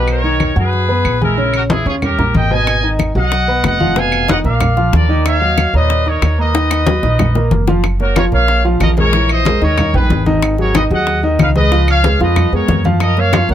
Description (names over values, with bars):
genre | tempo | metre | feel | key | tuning
latin, salsa | 186 BPM | 4/4 | straight | Eb minor | A4 = 440 Hz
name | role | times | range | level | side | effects
bright trumpet section | melody | 0.0-13.5 s | Fb4 to Ab5 | -17 LUFS | equal | none
warm concert grand piano | accompaniment | 0.0-13.5 s | Bb2 to Eb6 | -18 LUFS | equal | none
upright bass | bass | 0.0-13.5 s | F1 to F#2 | -16 LUFS | right 1 dB | none
claves | percussion | 0.1-13.5 s | none | -24 LUFS | equal | none
congas | percussion | 0.1-13.5 s | none | -19 LUFS | left 2 dB | none
bongos | percussion | 2.7-13.5 s | none | -22 LUFS | left 8 dB | none
room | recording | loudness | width
little or no reverb | close, detailed microphones | -11 LUFS | side -11 dB against mid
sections
0.0-7.8 A section; 7.8-13.5 B section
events
drum fill 6.5-7.8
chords
0.1 Bmaj7; 1.4 Bbm; 2.0 Eb7; 2.7 Abm7; 4.0 Fm7b5; 4.6 Bb; 5.3 Ebm7; 7.8 Gbmaj7; 9.1 Dbm69/Bb; 9.8 Eb; 10.4 Abm7; 11.7 Db9; 13.0 Gbmaj7